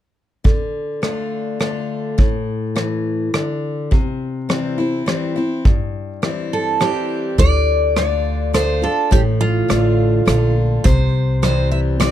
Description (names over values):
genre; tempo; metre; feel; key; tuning
honky-tonk and classic country; 104 BPM; 3/4; straight; D minor; A4 = 440 Hz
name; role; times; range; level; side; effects
picked steel-string acoustic guitar; accompaniment; 0.4-12.1 s; G2 to F4; -21 LUFS; left 3 dB; none
unplugged drum kit; drums; 0.5-12.1 s; hi-hat, kick drum, rim click; -17 LUFS; equal; none
picked steel-string acoustic guitar; melody; 6.5-12.1 s; F4 to E5; -19 LUFS; right 2 dB; plate reverb
upright bass; bass; 7.4-12.1 s; A1 to D2; -17 LUFS; equal; none
room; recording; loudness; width
light reverb; dark, warm production; -16 LUFS; side -11 dB against mid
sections
0.5-7.4 A section; 7.4-12.1 B section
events
none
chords
0.5 Dm; 3.9 C; 7.4 Dm; 10.9 C